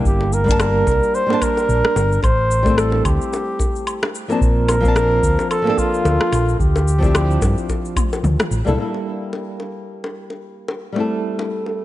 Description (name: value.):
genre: sunset chillout.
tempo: 110 BPM.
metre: 4/4.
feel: swing 58% on 16ths.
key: G dorian.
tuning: A4 = 440 Hz.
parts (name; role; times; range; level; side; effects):
flamenco guitar; accompaniment; 0.0-11.8 s; F3 to A5; -22 LUFS; equal; auto-pan, digital delay.
mellow flugelhorn; melody; 0.1-8.2 s; F4 to C5; -20 LUFS; equal; digital delay.
fingered electric bass; bass; 0.1-8.8 s; G1 to G2; -18 LUFS; equal; none.
deep house drum kit; drums; 0.1-8.8 s; cabasa, rim click, toms, woodblock; -25 LUFS; left 1 dB; overdrive, low-pass filter on perc, low-pass filter on snare, low-pass filter on toms.
electronic kick drum; drums; 0.1-8.1 s; none; -21 LUFS; equal; none.
bongos; percussion; 0.2-11.8 s; none; -28 LUFS; left 2 dB; none.
room: light reverb, small room ambience.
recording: nothing above 10.4 kHz.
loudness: -15 LUFS.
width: side -15 dB against mid.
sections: 0.0-8.8 A section; 8.8-11.8 B section.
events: drum fill 8.0-8.8.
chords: 0.1 Gm69; 2.2 Am7; 4.4 Bbmaj9; 6.6 Dm11; 8.8 Gm69; 11.0 Am7.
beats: | 0.05 0.60 1.14 1.69 | 2.23 2.78 3.33 3.87 | 4.42 4.96 5.51 6.05 | 6.60 7.14 7.69 8.23 | 8.78 9.32 9.87 10.42 | 10.96 11.51.